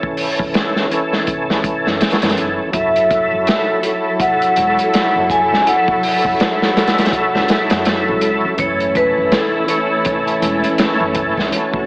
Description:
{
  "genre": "trip hop",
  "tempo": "82 BPM",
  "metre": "4/4",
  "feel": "swing 59% on 16ths",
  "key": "F# minor",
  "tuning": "A4 = 439 Hz",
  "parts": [
    { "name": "vibraphone with medium hard mallets", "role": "melody", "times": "0.0-11.9 s", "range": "A4 to G#5", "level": "-18 LUFS", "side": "equal", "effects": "none" },
    { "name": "overdriven tonewheel organ", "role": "accompaniment", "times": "0.0-11.9 s", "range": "E3 to A4", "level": "-18 LUFS", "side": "equal", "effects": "chorus vibrato, slow rotary speaker, harmonic tremolo, vintage 12-bit sampler grit, tape echo" },
    { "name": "crunchy breakbeat drum kit", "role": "drums", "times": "0.0-11.9 s", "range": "hi-hat, kick drum, snare drum", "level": "-19 LUFS", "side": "equal", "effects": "none" },
    { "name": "upright bass", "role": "bass", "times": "0.4-11.5 s", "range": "E1 to F#2", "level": "-27 LUFS", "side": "equal", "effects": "none" },
    { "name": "rich studio string section", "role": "sustained chords", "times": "2.7-11.9 s", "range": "F#3 to A4", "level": "-22 LUFS", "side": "equal", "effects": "none" }
  ],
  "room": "light reverb, studio reverb",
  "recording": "vinyl crackle, AM radio sound",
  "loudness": "-13 LUFS",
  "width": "side -26 dB against mid",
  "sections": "0.0-11.9 A section",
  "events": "none",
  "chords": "0.0 F#m7"
}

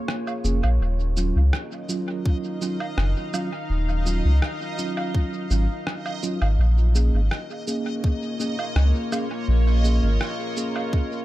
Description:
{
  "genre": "ambient dub",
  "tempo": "83 BPM",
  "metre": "4/4",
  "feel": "straight",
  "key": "Eb minor",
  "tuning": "A4 = 438 Hz",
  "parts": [
    { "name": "deep dark ambient pad", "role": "sustained chords", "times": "0.0-11.2 s", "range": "Bb3 to F5", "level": "-32 LUFS", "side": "equal", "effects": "chorus, built-in reverb" },
    { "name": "electronic rim click, woodblock and cabasa", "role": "drums", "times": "0.1-10.9 s", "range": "none", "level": "-32 LUFS", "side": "right 1 dB", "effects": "overdrive, dub echo" },
    { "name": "mellow tine electric piano", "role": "stabs", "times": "0.4-11.2 s", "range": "Gb3 to Ab4", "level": "-30 LUFS", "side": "right 2 dB", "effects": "medium stereo tremolo, dub echo" },
    { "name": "round analog bass", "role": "bass", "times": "0.4-10.2 s", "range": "Eb1 to Db2", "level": "-19 LUFS", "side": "equal", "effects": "tube saturation" },
    { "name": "backwards swelling texture", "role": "texture", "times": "1.6-11.2 s", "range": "Eb5", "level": "-37 LUFS", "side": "right 1 dB", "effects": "built-in reverb" },
    { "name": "electronic kick drum", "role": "drums", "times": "2.3-11.1 s", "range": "none", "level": "-21 LUFS", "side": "equal", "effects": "none" }
  ],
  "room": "digital ambience",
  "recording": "echo-heavy mix",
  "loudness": "-21 LUFS",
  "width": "side -16 dB against mid",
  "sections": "0.0-11.2 A section",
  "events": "none",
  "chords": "0.0 Bbm7; 0.8 Ebm9; 6.6 Bbm7"
}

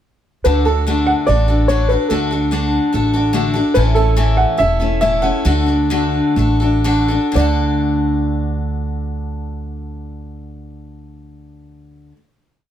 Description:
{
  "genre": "honky-tonk and classic country",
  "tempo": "116-146 BPM",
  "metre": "4/4",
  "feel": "straight",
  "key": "D major",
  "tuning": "A4 = 440 Hz",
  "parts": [
    { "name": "dark upright piano", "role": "melody", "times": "0.4-12.1 s", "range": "A4 to F#5", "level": "-18 LUFS", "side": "equal", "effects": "none" },
    { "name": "picked steel-string acoustic guitar", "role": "accompaniment", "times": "0.4-12.2 s", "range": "A2 to A4", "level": "-18 LUFS", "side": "left 2 dB", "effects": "none" },
    { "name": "upright bass", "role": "bass", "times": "0.5-12.1 s", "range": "E1 to D2", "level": "-18 LUFS", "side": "right 1 dB", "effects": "none" }
  ],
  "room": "light reverb",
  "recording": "close, detailed microphones",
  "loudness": "-14 LUFS",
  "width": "side -10 dB against mid",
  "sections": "0.5-7.3 interlude; 7.3-11.5 final chord",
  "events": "slowing down 3.8-7.3",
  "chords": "0.5 D; 3.8 A; 5.5 D"
}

